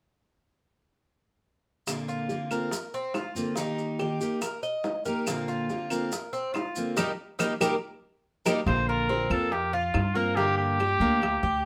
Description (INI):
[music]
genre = latin, Cuban son and guajira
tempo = 141 BPM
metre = 4/4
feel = straight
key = Bb major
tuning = A4 = 440 Hz
[part]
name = picked steel-string acoustic guitar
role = accompaniment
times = 1.9-11.3 s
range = Bb2 to G4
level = -33 LUFS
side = equal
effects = none
[part]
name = bongos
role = percussion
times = 1.9-11.4 s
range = none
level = -38 LUFS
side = equal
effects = none
[part]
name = claves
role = percussion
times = 1.9-11.4 s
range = none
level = -37 LUFS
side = equal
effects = none
[part]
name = maracas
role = percussion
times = 1.9-8.6 s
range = none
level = -42 LUFS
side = equal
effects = none
[part]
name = Cuban tres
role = arpeggios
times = 2.1-11.7 s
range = Bb3 to Eb5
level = -34 LUFS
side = equal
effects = none
[part]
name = clear trumpet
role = melody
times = 8.7-11.7 s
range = F4 to C5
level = -29 LUFS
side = equal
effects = none
[part]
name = upright bass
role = bass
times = 8.7-11.6 s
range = Bb1 to G2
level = -32 LUFS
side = equal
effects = none
[sound]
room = moderate studio reverb, RT60 0.7 s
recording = none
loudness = -28 LUFS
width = mono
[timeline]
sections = 1.9-8.7 A section; 8.7-11.7 B section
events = band accent 7.0-8.7; drum fill 8.0-8.7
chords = 1.9 Bbadd9; 3.6 Eb; 5.3 Bbadd9; 7.0 Eb; 8.7 Bbadd9; 10.4 Gm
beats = | 1.87 2.30 2.72 3.15 | 3.57 4.00 4.42 4.85 | 5.27 5.70 6.12 6.55 | 6.97 7.40 7.82 8.25 | 8.67 9.10 9.52 9.95 | 10.37 10.80 11.22 11.64